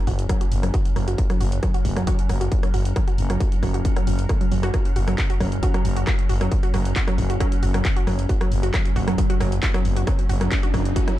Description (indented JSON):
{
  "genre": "driving peak-time techno",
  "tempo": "135 BPM",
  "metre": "4/4",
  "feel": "straight",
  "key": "unclear",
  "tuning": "A4 = 442 Hz",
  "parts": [
    { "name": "wide unison pluck", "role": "riff", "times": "0.0-11.2 s", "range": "F#3 to F#4", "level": "-28 LUFS", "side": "right 1 dB", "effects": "tube saturation, sidechain pumping, digital delay" },
    { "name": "swarming drone", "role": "drone", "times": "0.0-11.2 s", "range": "F#3 to C#4", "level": "-30 LUFS", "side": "equal", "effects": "built-in reverb, sidechain pumping" },
    { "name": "growling FM bass", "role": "bass", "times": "0.1-10.9 s", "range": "F#1", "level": "-23 LUFS", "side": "equal", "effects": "sidechain pumping" },
    { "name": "electronic kick drum", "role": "drums", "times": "0.1-11.1 s", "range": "none", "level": "-22 LUFS", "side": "equal", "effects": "distortion" },
    { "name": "techno drum kit", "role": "drums", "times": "0.1-11.2 s", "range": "handclaps, hi-hat, rim click", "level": "-31 LUFS", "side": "equal", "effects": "sidechain pumping on hats" },
    { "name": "riser", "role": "sound effects", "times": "9.4-11.2 s", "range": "none", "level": "-34 LUFS", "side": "right 1 dB", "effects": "none" }
  ],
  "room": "little or no reverb",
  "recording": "dark, warm production",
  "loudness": "-19 LUFS",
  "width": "side -14 dB against mid",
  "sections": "0.0-11.2 A section",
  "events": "filter sweep on synth arpeggio sound 0.0-11.2; riser 9.4-11.2",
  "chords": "0.0 F#5"
}